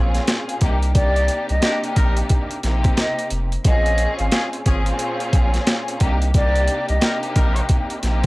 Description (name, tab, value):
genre	hip hop, boom-bap hip-hop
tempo	89 BPM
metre	4/4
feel	swing 63% on 16ths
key	unclear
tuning	A4 = 440 Hz
part	warm studio string section	accompaniment	0.0-8.3 s	Bb2 to Ab4	-24 LUFS	equal	cassette tape, high-pass filter, low-pass filter
part	warm sub bass	bass	0.0-8.3 s	F1 to C2	-20 LUFS	equal	transformer saturation
part	boom bap sampler-style drum kit	drums	0.1-8.3 s	hi-hat, kick drum, snare drum	-19 LUFS	equal	none
part	breathy mellow silver concert flute	melody	0.9-7.2 s	D5 to F5	-23 LUFS	equal	high-pass filter, low-pass filter
part	warm trumpet section	stabs	1.6-7.6 s	G3 to Bb4	-31 LUFS	left 1 dB	high-pass filter, low-pass filter, analog delay
room	little or no reverb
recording	dry, gritty hardware recording, cassette tape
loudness	-17 LUFS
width	side -22 dB against mid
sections	0.0-8.3 A section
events	none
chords	0.0 Bbm9; 0.6 Cm9; 3.6 Bbm9; 6.0 Cm9